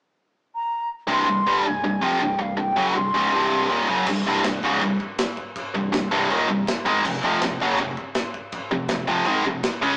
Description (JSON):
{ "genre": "heavy metal", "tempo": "162 BPM", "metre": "4/4", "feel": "straight", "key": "C minor", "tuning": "A4 = 442 Hz", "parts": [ { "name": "bright reedy bansuri", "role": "melody", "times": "0.6-3.9 s", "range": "F5 to C6", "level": "-23 LUFS", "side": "equal", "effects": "none" }, { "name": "tight distorted guitar", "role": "riff", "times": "1.1-10.0 s", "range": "C2 to Db4", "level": "-21 LUFS", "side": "equal", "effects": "distortion" }, { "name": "overdriven fingered electric bass", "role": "bass", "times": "1.1-10.0 s", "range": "C1 to Db2", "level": "-37 LUFS", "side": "equal", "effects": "none" }, { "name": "modern studio drum kit", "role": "drums", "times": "4.1-9.9 s", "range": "china cymbal, crash cymbal, kick drum, snare drum", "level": "-27 LUFS", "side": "equal", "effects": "none" } ], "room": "moderate stone room reverb, RT60 1.3 s", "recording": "rough rehearsal-room recording, warm saturation, small speaker sound", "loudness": "-20 LUFS", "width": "side -30 dB against mid", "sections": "0.0-1.1 A section; 1.1-4.1 B section; 4.1-10.0 C section", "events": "none", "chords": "0.0 N.C.; 1.1 Cm; 7.0 F5" }